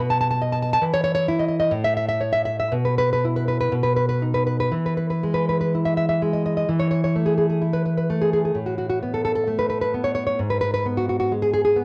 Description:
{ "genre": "romantic piece for solo classical guitar", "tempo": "57-73 BPM", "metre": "2/4", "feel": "rubato", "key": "E major", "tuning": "A4 = 440 Hz", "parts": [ { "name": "nylon-string guitar", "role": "solo", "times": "0.0-11.8 s", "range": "G#2 to A5", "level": "-22 LUFS", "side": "equal", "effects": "cassette tape" } ], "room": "moderate studio reverb, RT60 0.6 s", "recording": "home recording on cassette", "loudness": "-22 LUFS", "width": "mono", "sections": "0.0-4.7 A section; 4.7-11.8 B section", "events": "none", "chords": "0.0 B; 0.8 N.C.; 1.7 A; 2.7 E5/B; 3.7 B; 4.7 E; 6.7 Eadd11; 8.6 A69; 10.4 G#m7" }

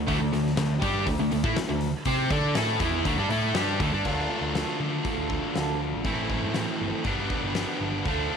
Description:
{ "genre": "classic rock", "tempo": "120 BPM", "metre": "4/4", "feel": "straight", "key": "D minor", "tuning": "A4 = 440 Hz", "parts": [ { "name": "distorted electric guitar", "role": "riff", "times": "0.0-8.4 s", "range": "G2 to D5", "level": "-28 LUFS", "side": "left 1 dB", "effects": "overdrive" }, { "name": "hollow-body short-scale picked electric bass", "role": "bass", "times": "0.0-8.3 s", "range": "G1 to D3", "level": "-31 LUFS", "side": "right 1 dB", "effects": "none" }, { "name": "fuzz guitar", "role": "riff", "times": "0.1-4.0 s", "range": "D3 to D5", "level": "-29 LUFS", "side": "right 1 dB", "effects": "distortion" }, { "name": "big rock drum kit", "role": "drums", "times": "0.1-8.2 s", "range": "crash cymbal, hi-hat, kick drum, snare drum", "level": "-31 LUFS", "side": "left 2 dB", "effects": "none" }, { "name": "picked steel-string acoustic guitar", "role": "accompaniment", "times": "4.0-8.4 s", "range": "A2 to B4", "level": "-35 LUFS", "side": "right 11 dB", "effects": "none" } ], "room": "light reverb, studio reverb", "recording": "1960s-style stereo", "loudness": "-24 LUFS", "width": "side -6 dB against mid", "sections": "0.0-4.0 A section; 4.0-8.4 B section", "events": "none", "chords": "0.0 D5; 4.0 Dm; 6.0 Am; 7.1 G" }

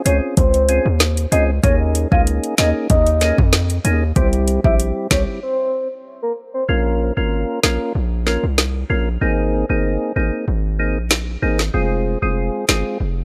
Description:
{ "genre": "dancehall", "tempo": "95 BPM", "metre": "4/4", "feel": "straight", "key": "unclear", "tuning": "A4 = 441 Hz", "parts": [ { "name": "percussive tonewheel organ", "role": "accompaniment", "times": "0.0-13.0 s", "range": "G3 to Bb4", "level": "-24 LUFS", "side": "equal", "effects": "slow rotary speaker" }, { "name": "soft octave-layered synth lead", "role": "melody", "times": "0.1-6.6 s", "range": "Bb4 to F5", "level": "-24 LUFS", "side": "equal", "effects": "chorus, tremolo, tape echo" }, { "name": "hard-hitting 808-style bass", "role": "bass", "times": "0.1-13.2 s", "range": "F1 to F2", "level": "-21 LUFS", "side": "equal", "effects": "none" }, { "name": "afro-pop drum kit", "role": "drums", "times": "0.1-12.8 s", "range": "hi-hat, kick drum, snare drum", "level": "-19 LUFS", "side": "equal", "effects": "overdrive" } ], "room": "light reverb, digital ambience", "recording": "none", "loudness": "-18 LUFS", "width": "mono", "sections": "0.0-6.7 A section; 6.7-13.2 B section", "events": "break 5.4-6.7, 6.7-13.2", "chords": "0.0 Dbmaj7; 1.6 Eb7sus4; 4.2 C; 6.7 Bbm; 9.2 Abadd9; 11.7 Fm" }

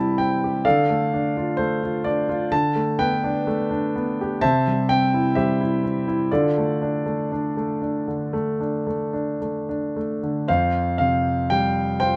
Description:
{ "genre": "classical, lyrical solo piano", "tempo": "54-66 BPM", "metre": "4/4", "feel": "rubato", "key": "D dorian", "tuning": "A4 = 440 Hz", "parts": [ { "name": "warm concert grand piano", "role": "solo", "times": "0.0-12.2 s", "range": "F2 to B5", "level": "-22 LUFS", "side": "equal", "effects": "none" } ], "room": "light reverb", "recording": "close, detailed microphones", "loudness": "-22 LUFS", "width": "mono", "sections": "0.0-10.5 A section; 10.5-12.2 B section", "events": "none", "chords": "0.0 C; 0.7 Dm; 2.5 Gadd9/D; 4.4 C; 6.3 Dm; 10.5 Fsus2" }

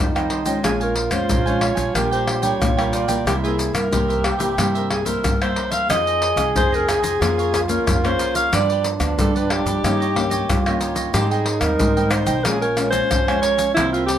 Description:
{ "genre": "samba and choro", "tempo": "91 BPM", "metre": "4/4", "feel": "straight", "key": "unclear", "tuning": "A4 = 440 Hz", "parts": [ { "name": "breathy alto saxophone", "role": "melody", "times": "0.0-14.2 s", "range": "E4 to F5", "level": "-22 LUFS", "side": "equal", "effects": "none" }, { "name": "mellow trombone", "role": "second line", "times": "0.0-14.2 s", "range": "C4 to Ab4", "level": "-25 LUFS", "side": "right 4 dB", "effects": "none" }, { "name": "cavaquinho", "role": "accompaniment", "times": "0.0-14.1 s", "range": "Eb4 to Ab5", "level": "-28 LUFS", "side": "right 5 dB", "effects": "none" }, { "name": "nylon-string guitar", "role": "accompaniment", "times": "0.0-14.2 s", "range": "G2 to Ab4", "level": "-27 LUFS", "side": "left 3 dB", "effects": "none" }, { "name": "upright bass", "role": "bass", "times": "0.0-14.2 s", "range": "Bb1 to Ab2", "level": "-25 LUFS", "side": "right 1 dB", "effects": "none" }, { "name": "egg shaker, pandeiro, tamborim and surdo", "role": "percussion", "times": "0.2-14.2 s", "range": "none", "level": "-23 LUFS", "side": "left 2 dB", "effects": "none" } ], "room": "moderate studio reverb, RT60 0.5 s", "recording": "none", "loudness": "-17 LUFS", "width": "side -10 dB against mid", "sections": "0.0-14.2 A section", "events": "none", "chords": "0.0 Abmaj7; 0.6 Bbm7; 2.0 Gm7/Bb; 3.3 C7; 5.9 Fm7; 7.2 Db6/F; 8.5 G7; 9.8 Eb7/G; 11.1 Abmaj7; 12.5 Bbm7" }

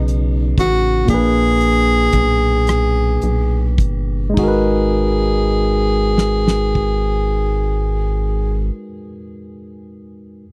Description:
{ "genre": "slow six-eight R&B", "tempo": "34-41 BPM (dotted quarters)", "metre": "6/8", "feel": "straight", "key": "G# minor", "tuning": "A4 = 438 Hz", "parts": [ { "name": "breathy tenor saxophone", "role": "melody", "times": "0.0-8.7 s", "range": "F#4 to G#4", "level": "-22 LUFS", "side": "equal", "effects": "none" }, { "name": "barky tine electric piano", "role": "accompaniment", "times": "0.0-10.5 s", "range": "A#2 to B4", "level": "-23 LUFS", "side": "equal", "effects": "none" }, { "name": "rubbery square bass", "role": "bass", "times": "0.0-8.7 s", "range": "G1 to B1", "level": "-21 LUFS", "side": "equal", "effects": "none" }, { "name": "damped 70s drum kit", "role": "drums", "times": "0.1-7.0 s", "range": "crash cymbal, hi-hat, kick drum, rim click, snare drum", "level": "-21 LUFS", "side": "equal", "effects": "none" } ], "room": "studio reverb", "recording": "dry, close 1970s-style studio recording", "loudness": "-17 LUFS", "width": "mono", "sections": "0.0-4.4 A section; 4.4-7.9 B section", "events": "slowing down 0.0-4.4", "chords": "0.0 C#sus2; 1.1 A#7b9; 4.4 G#m9" }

